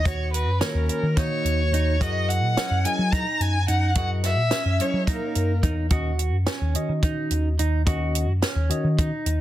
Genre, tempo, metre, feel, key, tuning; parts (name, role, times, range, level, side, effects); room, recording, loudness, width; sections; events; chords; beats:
progressive instrumental, band music in an uneven meter; 215 BPM (eighths); 7/8; straight; Eb phrygian; A4 = 440 Hz
dark violin; melody; 0.0-5.7 s; Bb4 to Bb5; -26 LUFS; equal; tape echo
hollow-body short-scale picked electric bass; bass; 0.0-9.4 s; Eb2 to Gb3; -23 LUFS; equal
clean electric guitar; arpeggios; 0.1-9.4 s; Db4 to Gb4; -31 LUFS; right 4 dB; wide subtle chorus
compact cocktail drum kit; drums; 0.1-9.4 s; hi-hat, kick drum, snare drum; -26 LUFS; equal; soft clipping on snare
tine electric piano; accompaniment; 0.6-9.1 s; Eb3 to Eb5; -30 LUFS; left 3 dB; phaser
dark trombone; second line; 4.8-5.7 s; Bb3 to Db4; -34 LUFS; left 4 dB; tape echo
light reverb; dense, heavily limited modern master; -21 LUFS; side -13 dB against mid
0.0-9.4 A section
0.0 Ebm7; 2.0 Gb13; 5.9 Ebm7
| 0.05 0.33 0.61 0.89 1.17 1.44 1.72 | 2.00 2.28 2.56 2.84 3.12 3.40 3.68 | 3.96 4.24 4.52 4.79 5.08 5.35 5.63 | 5.91 6.19 6.47 6.75 7.03 7.31 7.59 | 7.87 8.15 8.43 8.71 8.98 9.26